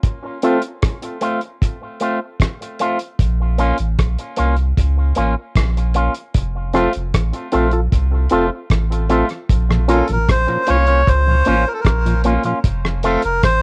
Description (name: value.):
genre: dub reggae.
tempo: 76 BPM.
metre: 4/4.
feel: straight.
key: Bb harmonic minor.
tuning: A4 = 440 Hz.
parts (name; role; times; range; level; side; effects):
cloth-damped thuddy drum kit; drums; 0.0-13.6 s; hi-hat, kick drum, rim click; -20 LUFS; equal; cassette tape.
electric guitar with an envelope filter; accompaniment; 0.4-13.2 s; A3 to F4; -25 LUFS; equal; cassette tape, tape echo.
percussive organ stab; stabs; 0.4-0.6, 6.7-10.0 s; C4 to Bb4; -24 LUFS; equal; chorus, cassette tape, tape echo.
warm sub bass; bass; 3.2-13.6 s; F1 to Db2; -20 LUFS; equal; none.
mellow tonewheel organ; accompaniment; 9.7-12.5 s; Bb2 to F4; -25 LUFS; equal; chorus vibrato, slow rotary speaker, cassette tape.
melodica; melody; 9.9-13.6 s; A4 to Db5; -21 LUFS; equal; cassette tape, tape echo.
room: light reverb.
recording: home recording on cassette.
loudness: -18 LUFS.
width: mono.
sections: 0.0-9.5 A section; 9.5-13.6 B section.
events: break 0.0-6.3.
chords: 0.0 F; 3.2 Bbm; 6.3 F; 9.5 Bbm; 12.6 F.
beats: | 0.04 0.83 1.62 2.40 | 3.19 3.98 4.77 5.56 | 6.35 7.13 7.92 8.71 | 9.50 10.28 11.07 11.86 | 12.64 13.43.